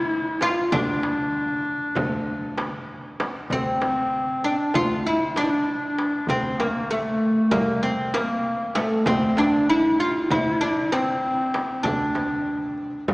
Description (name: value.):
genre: Turkish makam ensemble.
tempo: 194 BPM (eighths).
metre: 9/8.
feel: straight.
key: D makam ussak.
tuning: A4 = 438 Hz.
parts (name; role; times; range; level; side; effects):
oud; melody; 0.0-13.0 s; A3 to F4; -23 LUFS; equal; none.
mellow clarinet; second line; 0.0-13.1 s; A3 to F4; -26 LUFS; left 1 dB; none.
clear double bass; bass; 0.0-13.1 s; C2 to D2; -32 LUFS; equal; none.
darbuka; percussion; 0.1-13.1 s; none; -34 LUFS; equal; none.
frame drum; percussion; 0.4-13.1 s; none; -32 LUFS; right 1 dB; none.
room: wet church reverb, RT60 3.5 s.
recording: recorded in a church or concert hall, small speaker sound.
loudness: -21 LUFS.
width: side -23 dB against mid.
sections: 0.0-3.5 A section; 3.5-13.1 B section.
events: none.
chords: none.